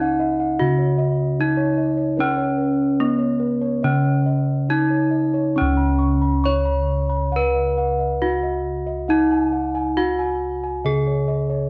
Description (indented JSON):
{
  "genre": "gamelan",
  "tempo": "68-78 BPM",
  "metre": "4/4",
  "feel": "straight",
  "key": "Db slendro",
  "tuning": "A4 = 441 Hz",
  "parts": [
    { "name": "gamelan-type bronze metallophone", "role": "melody", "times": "0.0-11.7 s", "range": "Cb4-45c to Db5", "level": "-23 LUFS", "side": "equal", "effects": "none" },
    { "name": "gamelan-type bossed gongs", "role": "arpeggios", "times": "0.0-11.7 s", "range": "Cb5-45c to Db6", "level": "-30 LUFS", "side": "equal", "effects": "none" },
    { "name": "gamelan-type bossed gongs", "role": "bass", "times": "0.0-11.7 s", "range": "Db2 to Eb4+30c", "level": "-24 LUFS", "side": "equal", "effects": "none" }
  ],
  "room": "moderate recital hall reverb, RT60 1.4 s",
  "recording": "dark, warm production",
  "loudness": "-20 LUFS",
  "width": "mono",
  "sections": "0.0-5.6 A section; 5.6-11.7 B section",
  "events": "none",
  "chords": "none"
}